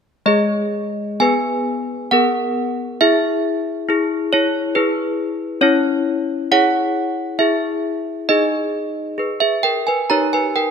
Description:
classical, tune for handbells; 67 BPM; 3/4; straight; G# minor; A4 = 440 Hz
desk bells; solo; 0.3-10.7 s; G#3 to A#5; -16 LUFS; equal
moderate concert hall reverb, RT60 2.0 s; close, detailed microphones; -16 LUFS; side -6 dB against mid
0.3-10.7 A section
0.3 G#m; 3.0 E; 5.6 C#m; 8.3 G#m/D#; 10.1 D#
| 0.27 1.21 2.11 | 3.01 3.88 4.75 | 5.62 6.52 7.41 | 8.30 9.21 10.11

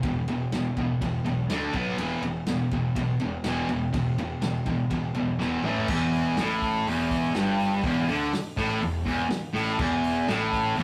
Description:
garage rock duo or trio; 123 BPM; 4/4; straight; E minor; A4 = 440 Hz
fuzz guitar; riff; 0.0-10.8 s; E2 to D4; -27 LUFS; equal; distortion
fuzz picked electric bass; bass; 0.0-10.8 s; E1 to D2; -38 LUFS; equal; overdrive
vintage drum kit; drums; 0.0-10.8 s; crash cymbal, hi-hat, kick drum, ride cymbal, snare drum, toms; -37 LUFS; equal
moderate studio reverb, RT60 0.5 s; rough rehearsal-room recording, warm saturation; -27 LUFS; mono
0.0-5.9 A section; 5.9-10.8 B section
drum fill 5.4-5.9
0.0 E5; 1.5 D5; 1.7 B5; 2.0 E5; 5.6 A5; 5.9 Em
| 0.03 0.52 1.01 1.49 | 1.98 2.47 2.96 3.44 | 3.93 4.42 4.91 5.40 | 5.89 6.38 6.87 7.35 | 7.84 8.33 8.82 9.30 | 9.79 10.28 10.77

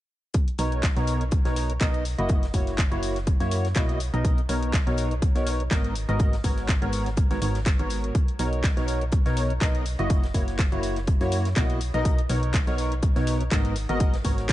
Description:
piano house; 123 BPM; 4/4; swing 55% on 16ths; B major; A4 = 439 Hz
electronic kick drum; drums; 0.3-14.5 s; -23 LUFS; equal
gated 80s drum kit; drums; 0.3-14.5 s; hi-hat, snare drum; -44 LUFS; left 2 dB
house drum kit; drums; 0.3-14.5 s; handclaps, hi-hat; -33 LUFS; left 1 dB
percussive organ stab; riff; 0.6-14.5 s; G#2 to D#5; -28 LUFS; equal; ensemble chorus, cassette tape, sidechain pumping, digital delay
solid FM bass; bass; 0.6-14.5 s; F#1 to F#2; -28 LUFS; equal; tube saturation, sidechain pumping
little or no reverb; nothing above 10.3 kHz; -22 LUFS; side -15 dB against mid
0.3-14.5 A section
0.3 Bmaj9; 2.1 F#7; 4.0 Bmaj9; 6.0 G#m11; 8.2 Bmaj9; 9.9 F#7; 11.8 Bmaj9; 13.8 G#m11
| 0.34 0.83 1.32 1.81 | 2.30 2.78 3.27 3.76 | 4.25 4.74 5.22 5.71 | 6.20 6.69 7.17 7.66 | 8.15 8.64 9.12 9.61 | 10.10 10.59 11.08 11.56 | 12.05 12.54 13.03 13.52 | 14.00 14.49

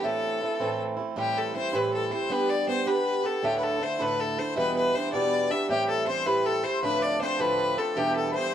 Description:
celtic folk; 106 BPM (dotted quarters); 6/8; straight; A minor; A4 = 443 Hz
bright fiddle; melody; 0.0-8.5 s; G4 to E5; -27 LUFS; left 4 dB
picked swing-style acoustic guitar; accompaniment; 0.0-8.5 s; D2 to G4; -27 LUFS; right 3 dB
mellow accordion; second line; 5.7-8.5 s; G4 to D5; -30 LUFS; left 1 dB
moderate plate reverb, RT60 3.3 s; dark, warm production; -24 LUFS; side -10 dB against mid
0.0-1.2 A section; 1.2-8.5 A section
0.0 Am; 1.2 Am7; 2.3 G; 3.4 Dsus2; 4.6 Em7; 5.7 Am7; 6.8 Dm7; 8.0 Em7
| 0.04 0.60 | 1.17 1.74 | 2.30 2.87 | 3.44 4.00 | 4.57 5.13 | 5.70 6.27 | 6.83 7.40 | 7.96 8.53

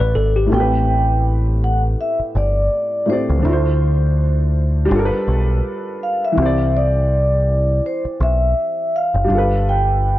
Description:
lo-fi hip hop; 82 BPM; 4/4; swing 57% on 16ths; A minor; A4 = 441 Hz
mellow tine electric piano; second line; 0.0-0.7 s; G4 to B4; -23 LUFS; left 3 dB; slow stereo tremolo, low-pass filter, tape echo
dark upright piano; accompaniment; 0.0-10.2 s; A2 to D5; -22 LUFS; equal; cassette tape, low-pass filter
deep dub picked electric bass; bass; 0.0-10.2 s; F#1 to D2; -17 LUFS; equal
vibraphone with soft mallets; melody; 0.5-10.2 s; C5 to G5; -20 LUFS; equal; low-pass filter
light reverb; dark, warm production; -15 LUFS; side -15 dB against mid
0.5-10.2 A section
break 0.0-0.5
0.0 Am7; 3.4 Dm7; 4.9 G7; 6.4 Cmaj7; 9.3 G9
| 0.52 1.25 1.98 2.71 | 3.44 4.18 4.91 5.64 | 6.37 7.10 7.84 8.57 | 9.30 10.03

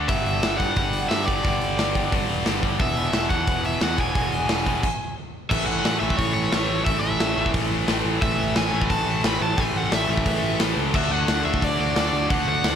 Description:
punk rock; 177 BPM; 4/4; straight; A4 = 440 Hz
tight distorted guitar; riff; 0.0-12.8 s; E2 to D4; -24 LUFS; equal; distortion
picked electric bass; bass; 0.0-12.8 s; E1 to G2; -28 LUFS; equal
cranked stack guitar; melody; 0.1-12.8 s; C#5 to B5; -26 LUFS; equal; overdrive
big rock drum kit; drums; 0.1-12.7 s; crash cymbal, hi-hat, kick drum, snare drum; -25 LUFS; equal
little or no reverb; -20 LUFS; side -8 dB against mid
0.0-5.5 A section; 5.5-12.8 B section
stop 4.8-5.5
0.1 G5; 2.8 E; 5.5 A5; 10.9 D
| 0.09 0.43 0.77 1.11 | 1.45 1.78 2.12 2.46 | 2.80 3.14 3.48 3.81 | 4.15 4.49 4.83 5.17 | 5.51 5.85 6.19 6.53 | 6.87 7.21 7.54 7.88 | 8.22 8.56 8.90 9.24 | 9.58 9.92 10.26 10.60 | 10.94 11.28 11.62 11.96 | 12.30 12.64

